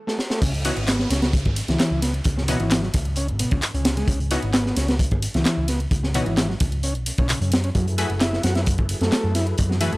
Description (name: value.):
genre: breakbeat, breaks.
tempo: 131 BPM.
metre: 4/4.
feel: straight.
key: C# minor.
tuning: A4 = 440 Hz.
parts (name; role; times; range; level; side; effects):
overdriven combo organ; riff; 0.1-10.0 s; B2 to F#4; -27 LUFS; equal; tube saturation, low-pass filter, tape echo.
crunchy breakbeat drum kit; drums; 0.1-9.9 s; crash cymbal, hi-hat, kick drum, snare drum; -23 LUFS; equal; high-pass filter on kick, high-pass filter on hats, high-pass filter on cymbals, high-pass filter on snare, high-pass filter on room.
hollow-body short-scale picked electric bass; bass; 0.4-10.0 s; F#1 to F#2; -24 LUFS; equal; none.
garage drum kit; drums; 0.4-10.0 s; handclaps, hi-hat, ride cymbal; -30 LUFS; equal; none.
downlifter; sound effects; 0.4-4.1 s; none; -38 LUFS; right 2 dB; none.
orchestra-hit-like synth stab; stabs; 0.7-9.9 s; E3 to B4; -27 LUFS; left 1 dB; built-in reverb, tape echo.
tonewheel organ; sustained chords; 7.7-10.0 s; F#3 to B4; -32 LUFS; equal; overdrive, chorus vibrato, slow rotary speaker, sidechain pumping.
room: small room reverb.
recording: dry, gritty hardware recording, transformer saturation.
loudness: -19 LUFS.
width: side -21 dB against mid.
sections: 0.4-10.0 A section.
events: break 0.0-0.4; drum fill 0.1-0.4; drop 0.4-10.0.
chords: 0.4 C#m11; 7.5 F#m11.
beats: | 0.42 0.88 1.34 1.79 | 2.25 2.71 3.17 3.63 | 4.08 4.54 5.00 5.46 | 5.92 6.37 6.83 7.29 | 7.75 8.21 8.66 9.12 | 9.58.